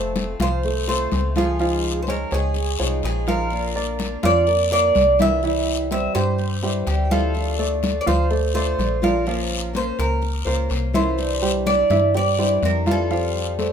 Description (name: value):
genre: latin, Cuban son and guajira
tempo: 125 BPM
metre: 4/4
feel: straight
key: unclear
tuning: A4 = 435 Hz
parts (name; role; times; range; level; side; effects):
- Cuban tres; melody; 0.0-13.6 s; G4 to E5; -23 LUFS; right 1 dB; none
- picked old ladder-braced acoustic guitar; accompaniment; 0.0-13.7 s; C3 to C5; -28 LUFS; left 4 dB; none
- dark grand piano; arpeggios; 0.0-13.7 s; E3 to F5; -25 LUFS; right 3 dB; none
- metallic FM bass; bass; 0.0-13.7 s; F1 to G2; -24 LUFS; left 1 dB; none
- congas; percussion; 0.2-13.7 s; none; -27 LUFS; left 2 dB; none
- guiro; percussion; 0.2-13.7 s; none; -33 LUFS; left 6 dB; none
room: moderate studio ambience, RT60 0.5 s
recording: minimal, uncompressed stereo recording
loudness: -18 LUFS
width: side -8 dB against mid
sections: 0.0-13.7 A section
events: none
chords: 0.0 F; 1.6 Dbadd9; 3.5 Bb; 5.4 C; 7.4 Dm; 9.3 Bbmadd9; 11.2 Cadd9; 13.1 Fadd9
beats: 0.16 0.64 1.12 | 1.60 2.08 2.56 3.04 | 3.52 4.00 4.48 4.96 | 5.44 5.92 6.39 6.87 | 7.35 7.83 8.31 8.79 | 9.27 9.75 10.23 10.71 | 11.19 11.67 12.15 12.63 | 13.11 13.59